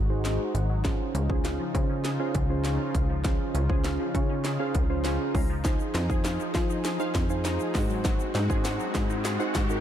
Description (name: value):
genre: dance-pop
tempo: 100 BPM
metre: 4/4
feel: straight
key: Db major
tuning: A4 = 440 Hz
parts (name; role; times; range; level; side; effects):
- soft electric-piano-like synth keys; accompaniment; 0.0-9.8 s; Db4 to Bb5; -31 LUFS; right 3 dB; chorus, sidechain pumping, low-pass filter
- soft supersaw; sustained chords; 0.0-9.8 s; Db3 to Ab4; -35 LUFS; left 1 dB; sidechain pumping, low-pass filter
- wide unison pluck; arpeggios; 0.0-9.6 s; F3 to Gb5; -38 LUFS; equal; phaser, sidechain pumping, low-pass filter, tape echo
- plucky analog bass; bass; 0.0-9.8 s; Ab1 to F3; -29 LUFS; equal; sidechain pumping
- house drum kit; drums; 0.2-9.7 s; hi-hat, kick drum, snare drum; -29 LUFS; equal; none
- egg shaker; percussion; 5.6-9.8 s; none; -47 LUFS; left 15 dB; none
- riser; sound effects; 7.6-9.8 s; none; -38 LUFS; left 2 dB; none
room: digital ambience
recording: dark, warm production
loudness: -24 LUFS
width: side -10 dB against mid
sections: 0.0-9.8 A section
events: build-up 0.0-9.8; drum fill 0.0-9.8; filter sweep 0.0-9.8; synth keys fill 4.7-5.6; riser 7.6-9.8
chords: 0.0 Ab7; 0.8 Dbmaj7; 5.6 Fm7; 7.7 Ab7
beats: 0.25 | 0.85 1.45 2.05 2.65 | 3.25 3.85 4.45 5.05 | 5.65 6.25 6.85 7.45 | 8.05 8.65 9.25